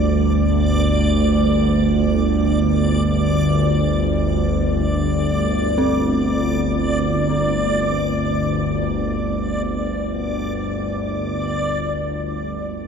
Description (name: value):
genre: dark ambient drone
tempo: free time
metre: none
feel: none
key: unclear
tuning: A4 = 441 Hz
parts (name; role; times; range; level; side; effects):
- bowed-like drone; drone; 0.0-12.9 s; G1 to D2; -18 LUFS; equal; built-in reverb
- backwards swelling texture; texture; 0.0-12.9 s; D5; -25 LUFS; left 1 dB; built-in reverb
- dark detuned synth bell; arpeggios; 5.8-12.0 s; C4; -26 LUFS; equal; chorus, ping-pong delay
- deep dark ambient pad; sustained chords; 12.0-12.9 s; none; barely audible; none; none
room: wet cathedral reverb, RT60 7.3 s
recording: dark, warm production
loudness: -17 LUFS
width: side -6 dB against mid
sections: 0.0-12.0 A section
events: none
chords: 0.0 G5; 12.0 Gm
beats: free time